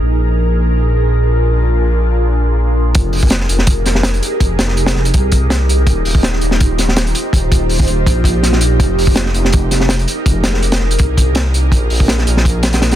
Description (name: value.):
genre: drum and bass, jungle.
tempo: 164 BPM.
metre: 4/4.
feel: straight.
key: F dorian.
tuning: A4 = 440 Hz.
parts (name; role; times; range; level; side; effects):
ethereal airy pad; sustained chords; 0.0-13.0 s; D4 to C5; -19 LUFS; right 1 dB; ensemble chorus, built-in reverb, phaser, vintage 12-bit sampler grit.
dark detuned saw bass; bass; 0.0-13.0 s; Eb1 to C2; -14 LUFS; equal; none.
crunchy breakbeat drum kit; drums; 2.9-13.0 s; hi-hat, kick drum, snare drum; -14 LUFS; equal; none.
room: small room ambience.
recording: dense, heavily limited modern master.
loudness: -11 LUFS.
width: side -12 dB against mid.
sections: 0.0-2.9 A section; 2.9-13.0 B section.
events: drop 2.9-13.0.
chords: 0.0 Bb7; 2.9 Fm11; 5.9 Eb69; 8.8 Fm11; 11.7 Bb7.